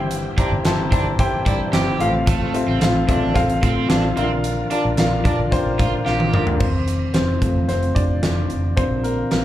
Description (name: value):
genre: piano-driven pop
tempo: 111 BPM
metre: 4/4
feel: straight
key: F major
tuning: A4 = 440 Hz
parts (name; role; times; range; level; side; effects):
- warm grand piano; accompaniment; 0.0-9.4 s; G2 to Bb5; -21 LUFS; left 2 dB; slapback echo
- bright tonewheel organ; sustained chords; 0.0-6.6 s; C3 to G4; -32 LUFS; equal; overdrive, chorus vibrato, fast rotary speaker
- vintage muted fingered electric bass; bass; 0.0-9.4 s; F1 to Bb2; -23 LUFS; equal; none
- huge arena drum kit; drums; 0.1-9.4 s; crash cymbal, hi-hat, kick drum, snare drum, toms; -21 LUFS; equal; none
- cranked stack guitar; riff; 0.4-6.4 s; A3 to G4; -27 LUFS; right 5 dB; overdrive, slapback echo
room: moderate club reverb, RT60 0.5 s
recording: live gig heard through the venue's PA, club reverb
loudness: -17 LUFS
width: side -13 dB against mid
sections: 0.0-6.6 A section; 6.6-9.4 B section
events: grand piano fill 5.0-6.6; drum fill 6.1-6.6; grand piano solo 6.6-9.4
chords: 0.0 Gm; 2.0 F/A; 4.2 Bb; 6.6 F; 8.8 Bb